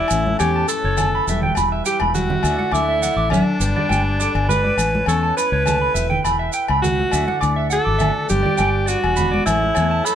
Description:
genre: highlife guitar band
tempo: 102 BPM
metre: 4/4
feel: straight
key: D major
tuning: A4 = 440 Hz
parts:
  - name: edgy alto saxophone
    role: melody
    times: 0.0-10.2 s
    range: D4 to B4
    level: -21 LUFS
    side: right 1 dB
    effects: none
  - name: nylon-string guitar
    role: accompaniment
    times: 0.0-10.2 s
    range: A2 to B4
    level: -27 LUFS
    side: left 3 dB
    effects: none
  - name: accordion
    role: sustained chords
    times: 0.0-10.2 s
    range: B4 to A5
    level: -33 LUFS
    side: equal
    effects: light tremolo tuning
  - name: electric guitar at the edge of break-up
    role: arpeggios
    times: 0.0-10.2 s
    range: C#5 to D6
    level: -23 LUFS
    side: right 4 dB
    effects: none
  - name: fingered electric bass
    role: bass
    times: 0.0-10.0 s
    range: E1 to E2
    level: -22 LUFS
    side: left 1 dB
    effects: none
  - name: agogo bells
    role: percussion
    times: 0.1-9.9 s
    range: none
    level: -25 LUFS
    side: left 4 dB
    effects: none
  - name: maracas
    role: percussion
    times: 0.1-10.2 s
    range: none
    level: -29 LUFS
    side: right 6 dB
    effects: none
  - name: congas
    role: percussion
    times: 0.3-9.8 s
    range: none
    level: -26 LUFS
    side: right 2 dB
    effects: none
room: moderate studio reverb, RT60 0.6 s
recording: band playing live in one room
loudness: -16 LUFS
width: side -9 dB against mid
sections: 0.0-10.2 A section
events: drum fill 2.0-2.4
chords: 0.1 Aadd9; 1.3 Em; 2.4 Dadd9; 3.6 G; 4.8 Aadd9; 6.0 Em; 7.1 Dadd9; 8.3 G; 9.5 Aadd9

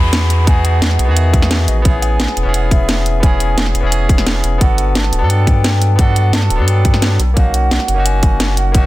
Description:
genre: liquid drum and bass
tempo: 174 BPM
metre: 4/4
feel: straight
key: E major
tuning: A4 = 444 Hz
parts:
  - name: mellow hollow silver concert flute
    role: melody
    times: 0.0-8.9 s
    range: D#5 to B5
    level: -23 LUFS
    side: right 1 dB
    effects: dub echo
  - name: barky tine electric piano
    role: accompaniment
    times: 0.0-8.9 s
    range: D#3 to A4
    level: -20 LUFS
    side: equal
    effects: medium stereo tremolo, tape echo
  - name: warm sub bass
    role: bass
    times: 0.0-8.9 s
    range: D1 to G2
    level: -14 LUFS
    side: equal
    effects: none
  - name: downlifter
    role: sound effects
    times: 0.0-1.9 s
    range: none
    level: -29 LUFS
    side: left 3 dB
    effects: none
  - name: garage drum kit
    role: drums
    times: 0.1-8.8 s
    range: hi-hat, snare drum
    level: -18 LUFS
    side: equal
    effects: studio reverb
  - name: electronic kick drum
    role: drums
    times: 0.5-8.8 s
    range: none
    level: -12 LUFS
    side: equal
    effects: studio reverb
room: little or no reverb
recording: dense, heavily limited modern master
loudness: -11 LUFS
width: side -17 dB against mid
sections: 0.0-8.9 A section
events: none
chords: 0.0 Emaj9; 1.9 Amaj9; 4.6 Gmaj9; 7.2 Bmaj9

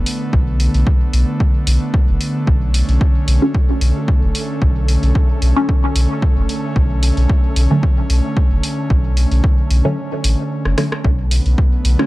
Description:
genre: dub techno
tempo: 112 BPM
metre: 4/4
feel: swing 54% on 16ths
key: B minor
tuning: A4 = 440 Hz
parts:
  - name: airy breathy pad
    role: sustained chords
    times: 0.0-12.1 s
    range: D3 to C#4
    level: -23 LUFS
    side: equal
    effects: chorus, sidechain pumping
  - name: warm sub bass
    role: bass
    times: 0.0-12.0 s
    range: F#1 to B1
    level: -15 LUFS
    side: equal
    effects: sidechain pumping
  - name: punchy analog drum machine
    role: drums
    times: 0.1-12.1 s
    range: hi-hat, rim click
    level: -24 LUFS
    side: equal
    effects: none
  - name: electronic kick drum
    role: drums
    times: 0.3-11.7 s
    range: none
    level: -15 LUFS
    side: equal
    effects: none
  - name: wind-like tuned noise texture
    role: texture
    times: 3.0-11.1 s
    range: A3 to A4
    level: -32 LUFS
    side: right 2 dB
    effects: built-in reverb, sidechain pumping
  - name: filtered dub chord stab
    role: stabs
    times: 3.4-12.1 s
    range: D3 to C#4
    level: -19 LUFS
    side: equal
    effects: phaser, cassette tape, sidechain pumping, dub echo
room: digital ambience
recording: dry, gritty hardware recording, transformer saturation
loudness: -13 LUFS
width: side -18 dB against mid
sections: 0.0-11.0 A section; 11.0-12.1 A section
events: break 10.0-11.0; drum fill 10.6-11.0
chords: 0.0 Bm7

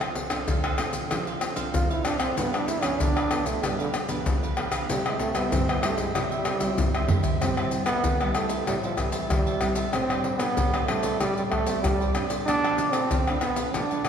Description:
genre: samba and choro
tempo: 95 BPM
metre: 4/4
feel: straight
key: C major, A minor from 7.4 s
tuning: A4 = 438 Hz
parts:
  - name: cavaquinho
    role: accompaniment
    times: 0.0-14.1 s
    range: D4 to A5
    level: -35 LUFS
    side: right 3 dB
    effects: none
  - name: nylon-string guitar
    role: accompaniment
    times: 0.0-14.1 s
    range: G2 to A4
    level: -32 LUFS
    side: equal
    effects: none
  - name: maracas, pandeiro, tamborim and surdo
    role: percussion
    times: 0.0-14.1 s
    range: none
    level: -26 LUFS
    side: left 1 dB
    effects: none
  - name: clear trombone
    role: melody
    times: 1.7-14.1 s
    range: D3 to F4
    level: -28 LUFS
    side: right 3 dB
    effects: none
room: wet concert hall reverb, RT60 1.8 s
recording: recorded in a church or concert hall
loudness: -23 LUFS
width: side -8 dB against mid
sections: 0.0-7.4 A section; 7.4-14.1 B section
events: trombone solo 0.0-7.4; drum fill 6.9-7.4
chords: 0.0 Dm7/F; 2.4 G7; 4.9 C; 7.4 Am7; 9.9 D7sus4/A; 12.5 Bm7b5

